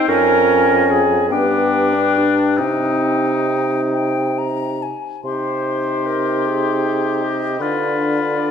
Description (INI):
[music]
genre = classical, slow romantic movement for wind quintet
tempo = 44-54 BPM (dotted quarters)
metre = 6/8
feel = rubato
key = C minor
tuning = A4 = 443 Hz
[part]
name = concert flute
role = melody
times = 0.0-8.5 s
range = G5 to C6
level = -23 LUFS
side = left 10 dB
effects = none
[part]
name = warm oboe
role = second line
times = 0.0-8.5 s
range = C4 to G4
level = -23 LUFS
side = left 5 dB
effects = none
[part]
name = clear French horn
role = accompaniment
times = 0.0-8.5 s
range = B3 to Eb4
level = -23 LUFS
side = left 1 dB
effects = none
[part]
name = warm clarinet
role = accompaniment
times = 0.0-8.5 s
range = C4 to Eb5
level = -20 LUFS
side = right 5 dB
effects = none
[part]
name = mellow bassoon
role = bass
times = 0.1-8.5 s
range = F2 to D3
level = -21 LUFS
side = right 1 dB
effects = none
[sound]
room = wet scoring stage reverb, RT60 1.8 s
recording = none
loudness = -15 LUFS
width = side -7 dB against mid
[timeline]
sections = 0.0-5.3 A section; 5.3-8.5 B section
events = none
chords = 0.1 Db/F; 1.3 G; 2.6 Cm; 7.6 Bdim/D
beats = | 0.08 1.30 | 2.59 3.93 | 5.25 6.46 | 7.61